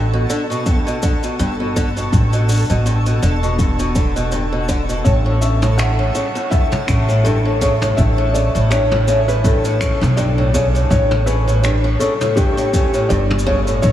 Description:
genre	folktronica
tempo	82 BPM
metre	4/4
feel	swing 56% on 16ths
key	A mixolydian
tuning	A4 = 440 Hz
part	picked swing-style acoustic guitar	arpeggios	0.0-13.9 s	G2 to D3	-20 LUFS	equal	diffuse ambient delay
part	upright bass	bass	0.0-13.9 s	E1 to B1	-17 LUFS	equal	none
part	twinkling granular texture	texture	0.0-13.9 s	A4 to C#6	-28 LUFS	right 1 dB	built-in reverb, analog chorus
part	jazz brush drum kit	drums	0.3-13.9 s	cabasa, finger snaps, toms	-26 LUFS	equal	none
part	electronic kick drum	drums	0.7-13.6 s	none	-18 LUFS	equal	none
part	felt-muted upright piano	melody	5.0-13.9 s	G4 to F#5	-21 LUFS	left 1 dB	diffuse ambient delay
room	moderate cathedral reverb, RT60 6.8 s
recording	dreamy mix soaked in reverb, small room ambience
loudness	-14 LUFS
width	side -12 dB against mid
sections	0.0-13.9 A section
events	none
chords	0.0 G6; 5.1 A7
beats	0.66 1.39 | 2.12 2.86 3.59 4.32 | 5.05 5.78 6.51 7.25 | 7.98 8.71 9.44 10.17 | 10.90 11.64 12.37 13.10 | 13.83

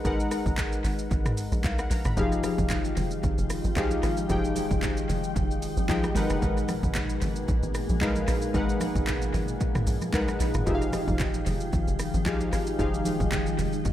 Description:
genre	amapiano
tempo	113 BPM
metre	4/4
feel	swing 55% on 16ths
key	F minor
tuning	A4 = 436 Hz
part	warm analog keys	accompaniment	0.0-13.9 s	F3 to Cb6	-29 LUFS	left 1 dB	chorus, analog delay
part	tight log drum bass	bass	0.0-13.9 s	F1 to C2	-30 LUFS	equal	none
part	deep house drum kit	drums	0.0-13.9 s	handclaps, hi-hat, kick drum, rim click, shaker, toms	-30 LUFS	equal	overdrive, analog delay
part	glassy FM pad	sustained chords	2.8-13.9 s	Bb2 to G5	-35 LUFS	left 1 dB	ensemble chorus, built-in reverb
part	congas	percussion	2.4-13.7 s	none	-36 LUFS	right 1 dB	none
room	little or no reverb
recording	echo-heavy mix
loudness	-24 LUFS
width	side -12 dB against mid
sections	0.0-13.9 A section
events	none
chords	0.0 Abm9; 2.2 Fm9; 6.2 Abm9; 10.7 Fm9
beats	| 0.05 0.58 1.11 1.64 | 2.17 2.70 3.23 3.77 | 4.30 4.83 5.36 5.89 | 6.42 6.95 7.48 8.01 | 8.54 9.08 9.61 10.14 | 10.67 11.20 11.73 12.26 | 12.79 13.32 13.85

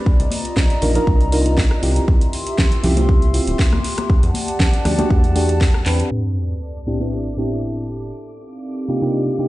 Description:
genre	deep house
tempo	119 BPM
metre	4/4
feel	swing 53% on 16ths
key	A minor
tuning	A4 = 441 Hz
part	hollow soft pad	sustained chords	0.0-9.5 s	Eb4 to C6	-28 LUFS	left 1 dB	chorus, sidechain pumping
part	mellow FM electric piano	stabs	0.0-9.5 s	A2 to B4	-22 LUFS	right 1 dB	chorus, sidechain pumping, tape echo
part	electronic kick drum	drums	0.1-5.7 s	none	-15 LUFS	equal	none
part	round analog bass	bass	0.2-6.0 s	D1 to E2	-18 LUFS	equal	tube saturation, sidechain pumping
part	house drum kit	drums	0.2-6.1 s	handclaps, hi-hat, rim click, snare drum	-26 LUFS	equal	low-pass filter on hats, low-pass filter on snare
part	congas	percussion	0.3-5.6 s	none	-26 LUFS	left 1 dB	none
part	sub drop	sound effects	6.1-8.1 s	none	-25 LUFS	equal	none
part	string machine, violins	texture	6.1-9.5 s	D6	-55 LUFS	equal	ensemble chorus
part	warbly tape-like pad	texture	6.1-9.5 s	C4 to A5	-28 LUFS	equal	chorus, built-in reverb, sidechain pumping
room	light reverb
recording	played on a big sound system in a bare room, stone room reverb, low-pass filter, nothing above 10.4 kHz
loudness	-15 LUFS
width	side -17 dB against mid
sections	0.0-6.1 A section; 6.1-9.5 B section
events	drum fill 5.9; impact 6.1-8.1; filter sweep on analog synth pad 6.1-9.5; filter sweep 6.1-9.5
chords	0.1 Cm11; 2.1 Dm11; 4.1 Em11; 6.1 Am11; 8.1 Cm11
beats	| 0.06 0.57 1.07 1.58 | 2.08 2.58 3.09 3.59 | 4.10 4.60 5.11 5.61 | 6.11 6.62 7.12 7.63 | 8.13 8.63 9.14

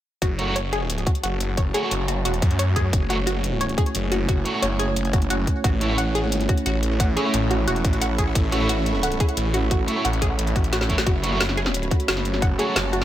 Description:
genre	dark technical drum and bass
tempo	177 BPM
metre	4/4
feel	straight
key	F# minor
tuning	A4 = 441 Hz
part	dark analog pad	sustained chords	0.2-13.0 s	A3 to C#5	-29 LUFS	right 1 dB	chorus, sidechain pumping
part	wide unison pluck	arpeggios	0.2-13.0 s	F#4 to F#5	-28 LUFS	left 1 dB	sidechain pumping, digital delay
part	snarling distorted saw bass	bass	0.2-13.0 s	E1 to F#2	-24 LUFS	equal	distortion, overdrive
part	drum and bass drum kit	drums	0.2-13.0 s	hi-hat, snare drum	-27 LUFS	equal	none
part	electronic kick drum	drums	0.2-12.5 s	none	-22 LUFS	equal	none
part	granular cloud pad	texture	1.2-13.0 s	F#4 to C#6	-34 LUFS	right 1 dB	built-in reverb, sidechain pumping
part	distorted electric guitar	stabs	0.4-12.8 s	A3 to C#5	-29 LUFS	right 2 dB	distortion, digital delay
room	light reverb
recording	none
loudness	-20 LUFS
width	side -12 dB against mid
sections	0.2-13.0 A section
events	fade-in on ambient pad 0.2-13.0; drum fill 10.7-11.1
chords	0.2 F#m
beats	| 0.22 0.56 0.90 1.24 | 1.57 1.91 2.25 2.59 | 2.93 3.27 3.61 3.95 | 4.29 4.62 4.96 5.30 | 5.64 5.98 6.32 6.66 | 7.00 7.34 7.68 8.02 | 8.35 8.69 9.03 9.37 | 9.71 10.05 10.39 10.73 | 11.07 11.40 11.74 12.08 | 12.42 12.76

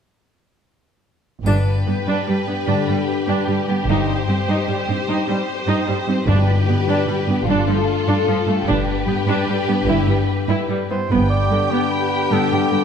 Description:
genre	cinematic, heroic adventure film score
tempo	100 BPM (dotted quarters)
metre	12/8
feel	straight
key	G mixolydian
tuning	A4 = 439 Hz
part	clear symphonic double bass section	bass	1.4-11.3 s	G1	-22 LUFS	right 3 dB	none
part	clear symphonic violin section	melody	1.5-12.8 s	A4 to G5	-27 LUFS	left 2 dB	none
part	warm symphonic violin section	second line	1.5-12.8 s	F4 to G4	-26 LUFS	left 2 dB	none
part	rich symphonic viola section	accompaniment	1.5-12.8 s	D3 to E4	-24 LUFS	right 1 dB	none
part	concert harp	arpeggios	1.5-12.8 s	G2 to C5	-23 LUFS	left 7 dB	none
part	dark symphonic cello section	bass	1.5-12.8 s	G2	-23 LUFS	right 3 dB	none
part	triangle	percussion	1.5-2.2 s	none	-44 LUFS	left 3 dB	none
part	timpani	percussion	6.3-6.8 s	G2	-24 LUFS	left 2 dB	none
part	mellow cor anglais	second line	10.9-12.8 s	G4 to D5	-22 LUFS	right 4 dB	none
part	warm French horn section	sustained chords	11.1-12.8 s	D3 to B3	-25 LUFS	left 5 dB	none
room	moderate scoring stage reverb, RT60 1.6 s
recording	dark, warm production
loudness	-16 LUFS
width	side -7 dB against mid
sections	1.5-11.1 A section; 11.1-12.8 B section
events	none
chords	1.5 G; 3.9 Cm/G; 6.3 G; 7.5 Dm/G; 8.7 G; 9.9 Em/G; 11.1 G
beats	| 1.46 2.07 2.68 3.29 | 3.89 4.49 5.09 5.69 | 6.28 6.88 7.47 8.07 | 8.67 9.27 9.87 10.48 | 11.10 11.71 12.32

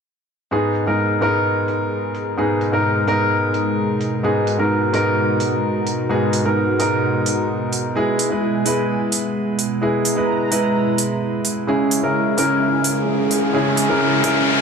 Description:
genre	EDM, festival progressive house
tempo	129 BPM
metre	4/4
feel	straight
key	G# minor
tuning	A4 = 439 Hz
part	warm concert grand piano	accompaniment	0.5-14.6 s	G#2 to B4	-18 LUFS	equal	ping-pong delay
part	lush unison pad	sustained chords	0.5-14.6 s	B2 to A#5	-23 LUFS	equal	chorus
part	electronic hi-hat	drums	0.8-14.3 s	none	-24 LUFS	right 4 dB	overdrive, low-pass filter on hats, low-pass filter on room
part	riser	sound effects	12.4-14.6 s	none	-22 LUFS	left 2 dB	none
room	moderate digital room reverb, RT60 1.2 s, digital ambience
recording	none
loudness	-17 LUFS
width	side -6 dB against mid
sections	0.5-14.6 A section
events	filter sweep on analog synth pad 0.5-14.6; riser 12.4-14.6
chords	0.5 G#m; 8.0 E; 11.7 C#m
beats	| 0.52 0.98 1.45 1.91 | 2.38 2.84 3.31 3.77 | 4.24 4.70 5.17 5.63 | 6.10 6.57 7.03 7.50 | 7.96 8.43 8.89 9.36 | 9.82 10.29 10.75 11.22 | 11.68 12.15 12.61 13.08 | 13.54 14.01 14.47

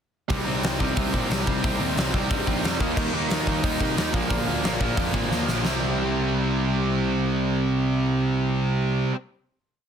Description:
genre	punk rock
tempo	180 BPM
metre	4/4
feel	straight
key	C minor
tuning	A4 = 440 Hz
part	distorted electric guitar	riff	0.3-9.2 s	Bb2 to Eb4	-27 LUFS	right 9 dB	overdrive
part	overdriven semi-hollow guitar	riff	0.3-9.2 s	Bb2 to E4	-29 LUFS	left 10 dB	none
part	scooped high-gain guitar	riff	0.3-9.2 s	Bb2 to Eb4	-29 LUFS	equal	distortion
part	fuzz picked electric bass	bass	0.3-9.0 s	Ab1 to C3	-29 LUFS	equal	overdrive
part	big rock drum kit	drums	0.3-5.7 s	crash cymbal, hi-hat, kick drum, snare drum	-27 LUFS	equal	none
room	light reverb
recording	dense, heavily limited modern master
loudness	-22 LUFS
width	side -8 dB against mid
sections	0.3-5.6 riff; 5.6-8.3 final chord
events	drum fill 5.3-5.6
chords	0.3 Cm; 2.8 Eb; 4.1 Bb; 5.6 C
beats	| 0.30 0.64 0.97 1.30 | 1.64 1.97 2.31 2.64 | 2.97 3.31 3.64 3.98 | 4.31 4.64 4.97 5.31 | 5.64 5.97 6.31 6.64 | 6.97 7.30 7.63 7.96

